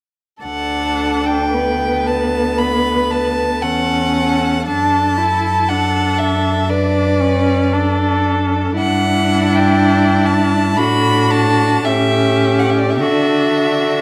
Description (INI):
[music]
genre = classical, slow romantic movement for string quartet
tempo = 57 BPM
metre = 4/4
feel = uneven beats, rubato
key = D major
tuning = A4 = 439 Hz
[part]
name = rich violin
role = melody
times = 0.4-14.0 s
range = D5 to B5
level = -21 LUFS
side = equal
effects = none
[part]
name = warm violin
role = second line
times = 0.4-14.0 s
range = E4 to B4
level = -23 LUFS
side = equal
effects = none
[part]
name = warm viola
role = accompaniment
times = 0.4-14.0 s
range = B3 to E4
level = -21 LUFS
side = equal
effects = none
[part]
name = rich cello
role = bass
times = 0.4-14.0 s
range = D2 to D3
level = -21 LUFS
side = equal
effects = none
[sound]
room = moderate recital hall reverb, RT60 1.6 s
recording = none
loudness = -16 LUFS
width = mono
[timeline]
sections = 0.4-14.0 A section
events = none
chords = 0.4 D; 4.7 D/F#; 8.8 Em7/G; 10.8 D/A; 11.9 A7; 13.0 D